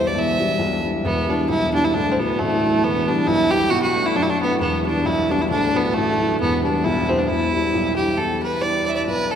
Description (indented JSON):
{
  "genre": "celtic folk, Celtic polka",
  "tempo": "135 BPM",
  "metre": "2/4",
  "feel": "swing 56% on 8ths",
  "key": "E minor",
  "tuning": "A4 = 435 Hz",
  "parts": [
    { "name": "rich fiddle", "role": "melody", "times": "0.0-9.4 s", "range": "A3 to E5", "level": "-20 LUFS", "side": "right 1 dB", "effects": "none" },
    { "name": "dark upright piano", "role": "accompaniment", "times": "0.0-9.4 s", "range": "D1 to E4", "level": "-22 LUFS", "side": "left 1 dB", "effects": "none" }
  ],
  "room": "wet cathedral reverb, RT60 6.4 s",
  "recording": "recorded in a church or concert hall",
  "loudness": "-17 LUFS",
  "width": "side -8 dB against mid",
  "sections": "0.0-1.0 A section; 1.0-8.2 A section; 8.2-9.4 B section",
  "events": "none",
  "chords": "0.1 Em7; 1.0 Em; 1.9 Dadd9; 2.8 Em; 3.7 Bm7; 4.6 Em; 5.5 Dadd9; 6.4 Em; 7.3 Em7",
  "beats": "| 0.14 0.59 | 1.03 1.48 | 1.93 2.38 | 2.82 3.27 | 3.71 4.16 | 4.61 5.05 | 5.50 5.94 | 6.39 6.83 | 7.28 7.72 | 8.16 8.61 | 9.05"
}